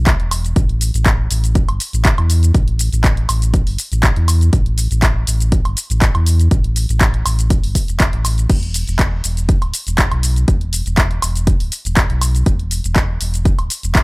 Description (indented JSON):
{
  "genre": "deep house",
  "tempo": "121 BPM",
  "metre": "4/4",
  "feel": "swing 53% on 16ths",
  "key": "unclear",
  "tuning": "A4 = 441 Hz",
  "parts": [
    { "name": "sub bass with octave", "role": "bass", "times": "0.0-14.0 s", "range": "D1 to E2", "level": "-16 LUFS", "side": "equal", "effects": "sidechain pumping" },
    { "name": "electronic kick drum", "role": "drums", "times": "0.1-14.0 s", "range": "none", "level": "-15 LUFS", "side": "equal", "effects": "none" },
    { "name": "punchy analog drum machine", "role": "drums", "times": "0.1-14.0 s", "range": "crash cymbal, handclaps, hi-hat, shaker, woodblock", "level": "-20 LUFS", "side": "equal", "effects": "none" }
  ],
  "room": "little or no reverb",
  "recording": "dry, gritty hardware recording",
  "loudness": "-13 LUFS",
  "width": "side -26 dB against mid",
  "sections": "0.0-14.0 A section",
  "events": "none",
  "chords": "none"
}